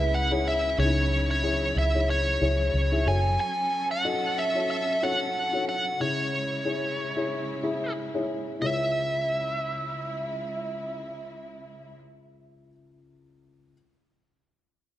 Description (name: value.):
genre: pop.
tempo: 92 BPM.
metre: 4/4.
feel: swing 56% on 16ths.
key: C# minor.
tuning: A4 = 436 Hz.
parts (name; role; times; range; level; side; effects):
biting lead guitar; melody; 0.0-12.0 s; C#5 to G#5; -28 LUFS; right 1 dB; overdrive.
dark upright piano; accompaniment; 0.0-13.7 s; C#2 to E5; -30 LUFS; left 3 dB; none.
rich studio string section; sustained chords; 0.0-12.0 s; C#3 to A4; -37 LUFS; right 1 dB; none.
vintage muted fingered electric bass; bass; 0.0-3.4 s; F#1 to C#2; -26 LUFS; equal; none.
room: light reverb, small room ambience.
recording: none.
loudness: -24 LUFS.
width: side -13 dB against mid.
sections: 0.0-8.6 A section; 8.6-11.2 B section.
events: none.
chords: 0.0 C#m; 3.1 F#m; 6.0 C#m.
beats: 0.12 | 0.78 1.43 2.08 2.73 | 3.39 4.04 4.69 5.35 | 6.00 6.65 7.30 7.96 | 8.61 9.27 9.92 10.57.